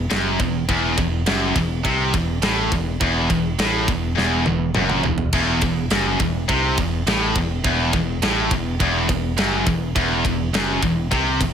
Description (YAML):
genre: heavy metal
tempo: 104 BPM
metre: 4/4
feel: straight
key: unclear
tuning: A4 = 440 Hz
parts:
  - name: heavy high-gain guitar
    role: riff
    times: 0.0-11.5 s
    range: E2 to C3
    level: -23 LUFS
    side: right 9 dB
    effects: distortion
  - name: high-gain distorted guitar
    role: riff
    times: 0.0-11.5 s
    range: E2 to C3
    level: -23 LUFS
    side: left 10 dB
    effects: distortion
  - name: modern bright picked electric bass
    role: bass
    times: 0.0-11.5 s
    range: E1 to C2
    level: -25 LUFS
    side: equal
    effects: none
  - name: tight metal drum kit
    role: drums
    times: 0.1-11.5 s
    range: crash cymbal, kick drum, ride cymbal, snare drum, toms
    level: -24 LUFS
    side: equal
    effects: none
room: light reverb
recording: none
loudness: -18 LUFS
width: side -8 dB against mid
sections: 0.0-11.5 A section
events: drum fill 4.2-5.3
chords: 0.0 E5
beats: 0.11 | 0.69 1.27 1.85 2.43 | 3.01 3.59 4.17 4.75 | 5.33 5.91 6.49 7.07 | 7.64 8.22 8.80 9.38 | 9.96 10.54 11.12